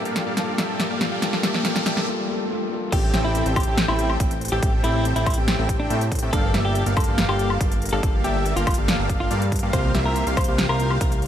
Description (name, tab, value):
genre	future bass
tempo	141 BPM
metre	4/4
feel	half-time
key	unclear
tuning	A4 = 441 Hz
part	felt-muted upright piano	accompaniment	0.0-2.9 s	G3 to A5	-31 LUFS	left 4 dB	sidechain pumping, digital delay
part	ethereal airy pad	sustained chords	0.0-2.0 s	G2 to A5	-39 LUFS	left 2 dB	none
part	Celtic harp	arpeggios	0.0-11.3 s	C4 to C5	-35 LUFS	left 6 dB	none
part	dense compressed supersaw	riff	0.0-11.1 s	Bb3 to G5	-27 LUFS	equal	sidechain pumping, digital delay
part	riser and swell	sound effects	0.0-2.9 s	none	-34 LUFS	right 2 dB	none
part	big-room dance drum kit	drums	0.1-11.3 s	crash cymbal, hi-hat, snare drum, woodblock	-26 LUFS	equal	overdrive, studio reverb
part	clean electric guitar	melody	2.9-10.9 s	D4 to C5	-28 LUFS	equal	sidechain pumping, digital delay
part	airy dreamy lead	arpeggios	2.9-11.1 s	E5 to G5	-32 LUFS	equal	chorus, sidechain pumping
part	fat analog bass	bass	2.9-11.3 s	G1 to A2	-24 LUFS	equal	sidechain pumping
part	electronic kick drum	drums	2.9-11.1 s	none	-23 LUFS	equal	overdrive, studio reverb
room	light reverb, digital ambience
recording	none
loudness	-19 LUFS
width	side -10 dB against mid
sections	0.0-2.9 A section; 2.9-11.3 B section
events	build-up 0.0-2.9; drum fill 0.0-2.1; riser 0.0-2.1; break 2.1-2.9; swell 2.1-2.9; drop 2.9-11.3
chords	0.0 Gm9; 2.9 Am7; 6.3 Gm9; 9.7 C7sus4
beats	0.37 0.80 | 1.22 1.65 2.07 2.50 | 2.92 3.35 3.78 4.20 | 4.63 5.05 5.48 5.90 | 6.33 6.75 7.18 7.61 | 8.03 8.46 8.88 9.31 | 9.73 10.16 10.59 11.01